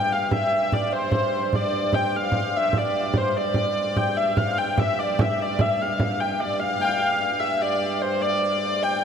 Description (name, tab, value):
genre	medieval dance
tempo	98 BPM (dotted quarters)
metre	6/8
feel	straight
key	unclear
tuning	A4 = 444 Hz
part	dark hurdy-gurdy	melody	0.0-9.0 s	C5 to G5	-22 LUFS	left 1 dB	none
part	pedal harmonium	drone	0.0-9.0 s	G2	-31 LUFS	right 1 dB	none
part	frame drum	percussion	0.1-6.3 s	none	-27 LUFS	right 2 dB	none
room	wet cathedral reverb, RT60 6.6 s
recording	in a vast, echoing space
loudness	-21 LUFS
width	side -7 dB against mid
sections	0.0-6.4 A section; 6.4-9.0 A section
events	none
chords	none